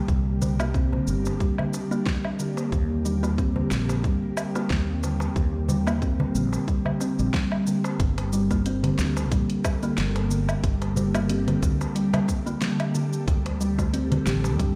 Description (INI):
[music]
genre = organic downtempo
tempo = 91 BPM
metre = 4/4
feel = swing 55% on 16ths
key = G minor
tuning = A4 = 440 Hz
[part]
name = ethereal airy pad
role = sustained chords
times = 0.0-14.8 s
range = D3 to A4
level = -33 LUFS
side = equal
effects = ensemble chorus, built-in reverb, phaser, sidechain pumping
[part]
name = kalimba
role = arpeggios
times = 0.0-14.7 s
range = D3 to C4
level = -30 LUFS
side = equal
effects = digital delay
[part]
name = mellow fretless electric bass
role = bass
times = 0.1-14.7 s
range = G1 to G2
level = -28 LUFS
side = equal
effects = none
[part]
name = deep house drum kit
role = drums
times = 0.1-14.7 s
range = hi-hat, shaker, snare drum, woodblock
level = -35 LUFS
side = equal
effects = overdrive
[part]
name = electronic kick drum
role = drums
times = 0.1-14.7 s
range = none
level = -27 LUFS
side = equal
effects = none
[part]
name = darbuka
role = percussion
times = 0.4-14.6 s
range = none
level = -35 LUFS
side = equal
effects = none
[sound]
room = light reverb, digital ambience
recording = played on a big sound system in a bare room, stone room reverb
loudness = -25 LUFS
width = mono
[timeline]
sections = 0.0-8.0 A section; 8.0-14.8 B section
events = none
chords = 0.0 C7(no3); 2.7 Eb6; 8.0 Gmadd9; 13.3 D7sus4